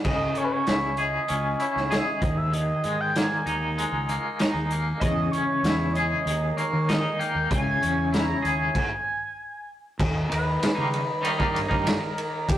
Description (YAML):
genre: psychedelic rock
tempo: 96 BPM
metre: 4/4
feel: straight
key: unclear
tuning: A4 = 439 Hz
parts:
  - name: sync lead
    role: melody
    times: 0.0-12.6 s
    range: G4 to Bb5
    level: -28 LUFS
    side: right 1 dB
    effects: chorus
  - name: raw garage drum kit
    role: drums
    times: 0.0-12.6 s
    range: crash cymbal, hi-hat, kick drum, ride cymbal, snare drum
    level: -27 LUFS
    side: equal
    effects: none
  - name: twangy electric guitar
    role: riff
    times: 0.1-12.0 s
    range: Eb2 to Ab4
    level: -27 LUFS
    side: left 2 dB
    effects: tremolo
  - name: fuzz fingered electric bass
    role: bass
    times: 0.1-12.6 s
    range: Db2 to Eb3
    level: -29 LUFS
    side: equal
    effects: overdrive
  - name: overdriven combo organ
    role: sustained chords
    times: 5.0-12.6 s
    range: Eb3 to Bb5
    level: -35 LUFS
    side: right 2 dB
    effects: none
room: wet stone room reverb, RT60 1.1 s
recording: rough rehearsal-room recording, warm saturation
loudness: -22 LUFS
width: side -12 dB against mid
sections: 0.1-10.0 A section; 10.0-12.6 B section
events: stop 8.7-10.0; analog synth lead solo 10.0-12.6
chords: 0.1 Dbm; 2.2 Ebsus4; 5.0 Dbm/Fb; 6.3 Ebsus4; 7.5 Dbm; 8.7 N.C.; 10.0 Eb